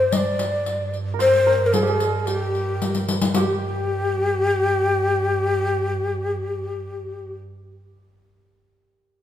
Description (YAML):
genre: Persian modal ensemble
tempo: 112 BPM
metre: 3/4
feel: straight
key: G dastgah shur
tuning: A4 = 440 Hz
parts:
  - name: breathy ney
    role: melody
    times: 0.0-7.3 s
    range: G4 to Eb5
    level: -21 LUFS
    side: left 2 dB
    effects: none
  - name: santur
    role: second line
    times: 0.0-8.0 s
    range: G4 to F5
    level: -30 LUFS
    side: right 6 dB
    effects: none
  - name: rich double bass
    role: drone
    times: 0.0-7.4 s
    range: G2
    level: -28 LUFS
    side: right 2 dB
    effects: none
  - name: riq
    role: percussion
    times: 0.1-3.6 s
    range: none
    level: -25 LUFS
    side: left 3 dB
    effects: none
room: moderate recital hall reverb, RT60 1.6 s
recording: minimal, uncompressed stereo recording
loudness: -19 LUFS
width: side -11 dB against mid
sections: 0.0-3.4 A section; 3.4-6.6 B section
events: drum fill 2.8-3.4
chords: none